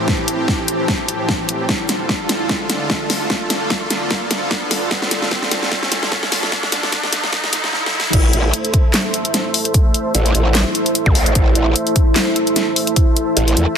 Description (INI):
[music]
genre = heavy wobble dubstep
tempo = 149 BPM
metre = 4/4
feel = swing 55% on 16ths, half-time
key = A minor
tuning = A4 = 440 Hz
[part]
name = supersaw pad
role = sustained chords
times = 0.0-13.8 s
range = D2 to E5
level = -23 LUFS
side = right 1 dB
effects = sidechain pumping, low-pass filter
[part]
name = riser and zap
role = sound effects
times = 0.3-8.1, 11.1-11.2 s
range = none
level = -26 LUFS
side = equal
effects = none
[part]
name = deep dark ambient pad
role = texture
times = 0.0-13.8 s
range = E4 to A5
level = -23 LUFS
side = right 1 dB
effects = chorus, built-in reverb, sidechain pumping
[part]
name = dubstep drum kit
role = drums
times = 0.1-13.7 s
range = crash cymbal, handclaps, hi-hat, snare drum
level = -19 LUFS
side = left 1 dB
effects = none
[part]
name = electronic kick drum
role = drums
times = 0.1-13.1 s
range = none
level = -17 LUFS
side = equal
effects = none
[part]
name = growl bass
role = bass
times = 8.1-13.7 s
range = A1 to E2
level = -16 LUFS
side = equal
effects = chorus, overdrive
[sound]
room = moderate lush hall reverb, RT60 1.8 s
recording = dense, heavily limited modern master, high-pass filter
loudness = -15 LUFS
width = side -8 dB against mid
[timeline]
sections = 0.0-8.1 A section; 8.1-13.8 B section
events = build-up 0.0-8.1; drum fill 0.0-7.7, 7.7-8.1; filter sweep 0.0-8.1; riser 0.3-8.1; drop 8.1-13.8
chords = 0.0 Am; 1.7 Dm; 8.1 Am